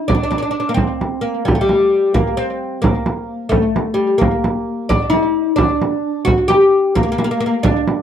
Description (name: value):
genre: Persian modal ensemble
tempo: 88 BPM (dotted quarters)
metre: 6/8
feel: straight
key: unclear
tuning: A4 = 440 Hz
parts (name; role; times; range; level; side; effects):
- oud; melody; 0.0-8.0 s; G3 to G4; -16 LUFS; left 1 dB; slapback echo
- frame drum; percussion; 0.1-8.0 s; none; -17 LUFS; right 2 dB; none
room: moderate booth ambience, RT60 0.2 s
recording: dry, close 1970s-style studio recording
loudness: -14 LUFS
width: side -9 dB against mid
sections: 0.0-8.0 A section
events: none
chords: none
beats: | 0.11 0.80 | 1.48 2.17 | 2.85 3.54 | 4.22 4.91 | 5.59 6.28 | 6.96 7.65